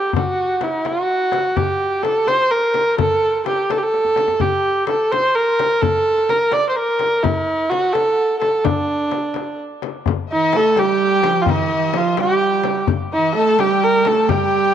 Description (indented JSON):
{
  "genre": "Persian modal ensemble",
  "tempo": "85 BPM (dotted quarters)",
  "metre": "6/8",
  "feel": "straight",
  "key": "unclear",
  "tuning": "A4 = 440 Hz",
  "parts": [
    { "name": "warm kamancheh", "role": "melody", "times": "0.0-14.7 s", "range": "D4 to D5", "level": "-16 LUFS", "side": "right 1 dB", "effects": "tape echo" },
    { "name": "tombak", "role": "percussion", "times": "0.1-14.4 s", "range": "none", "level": "-26 LUFS", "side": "left 7 dB", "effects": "none" },
    { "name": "frame drum", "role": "percussion", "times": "0.2-14.4 s", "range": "none", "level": "-26 LUFS", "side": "left 11 dB", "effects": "none" },
    { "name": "mellow duduk", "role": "second line", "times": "10.3-14.7 s", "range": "Eb3+45c to A3", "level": "-22 LUFS", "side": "right 14 dB", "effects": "tape echo" },
    { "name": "warm chamber violin section", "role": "second line", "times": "10.3-14.7 s", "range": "Eb5+45c to A5", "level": "-25 LUFS", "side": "left 11 dB", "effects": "none" }
  ],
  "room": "moderate spring reverb, RT60 2.9 s",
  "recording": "1960s-style stereo with parts hard left and right",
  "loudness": "-15 LUFS",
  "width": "side -9 dB against mid",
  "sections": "0.0-10.1 A section; 10.1-14.7 B section",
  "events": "drum fill 3.9-4.4",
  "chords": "none"
}